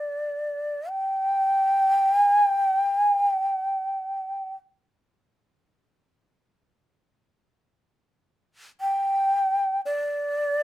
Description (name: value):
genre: japanese traditional, Japanese chamber music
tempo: free time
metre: none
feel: none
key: unclear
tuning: A4 = 437 Hz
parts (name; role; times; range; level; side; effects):
- breathy hollow shakuhachi; solo; 0.0-10.6 s; D5 to G5; -21 LUFS; equal; none
room: moderate studio ambience, RT60 0.5 s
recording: none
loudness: -21 LUFS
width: side -15 dB against mid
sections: 0.0-10.6 A section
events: none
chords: none